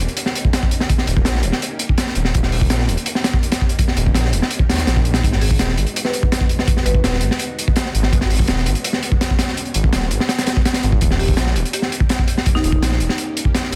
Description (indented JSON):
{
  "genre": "drum and bass, jungle",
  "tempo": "166 BPM",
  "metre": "4/4",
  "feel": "straight",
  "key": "G# minor",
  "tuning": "A4 = 440 Hz",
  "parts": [
    { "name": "soft string machine", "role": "sustained chords", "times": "0.0-13.8 s", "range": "G#3 to G4", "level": "-34 LUFS", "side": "equal", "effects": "none" },
    { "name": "dark detuned saw bass", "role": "bass", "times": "0.0-13.8 s", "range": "D#1 to D#2", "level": "-21 LUFS", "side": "equal", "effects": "none" },
    { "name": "crunchy breakbeat drum kit", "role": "drums", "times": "0.1-13.8 s", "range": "hi-hat, kick drum, snare drum", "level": "-19 LUFS", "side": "equal", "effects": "none" },
    { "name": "marimba with medium mallets", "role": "melody", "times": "5.4-7.2, 11.2-12.9 s", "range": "D#4 to B4", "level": "-30 LUFS", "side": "equal", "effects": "vintage 12-bit sampler grit, dub echo" }
  ],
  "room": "studio ambience",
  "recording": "dense, heavily limited modern master",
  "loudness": "-18 LUFS",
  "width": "mono",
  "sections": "0.0-13.8 A section",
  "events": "none",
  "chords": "0.0 D#7; 5.2 G#m7; 11.0 D#7"
}